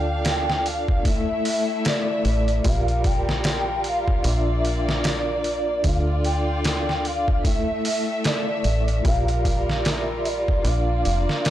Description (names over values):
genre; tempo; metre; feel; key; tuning
trip hop; 75 BPM; 4/4; swing 58% on 16ths; D minor; A4 = 440 Hz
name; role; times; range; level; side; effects
pure breathy sine lead; melody; 0.0-11.5 s; D5 to G5; -27 LUFS; equal; phaser, ensemble chorus, cassette tape, tape echo
vibraphone with soft mallets; accompaniment; 0.0-11.5 s; A3 to E5; -28 LUFS; left 1 dB; tremolo
muted studio violin section; sustained chords; 0.0-11.5 s; G3 to F5; -32 LUFS; left 1 dB; vintage 12-bit sampler grit
deep dub fingered electric bass; bass; 0.0-11.3 s; F1 to D2; -24 LUFS; equal; transformer saturation
trip hop sampler-style drum kit; drums; 0.2-11.5 s; hi-hat, kick drum, snare drum; -25 LUFS; equal; none
room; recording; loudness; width
digital ambience; dry, gritty hardware recording, transformer saturation; -20 LUFS; side -12 dB against mid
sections
0.0-11.5 A section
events
none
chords
0.0 Dm; 1.1 A5; 2.7 Gm7/Bb; 4.3 Bb; 5.9 Dm; 7.5 A5; 9.1 Gm7/Bb; 10.7 Bb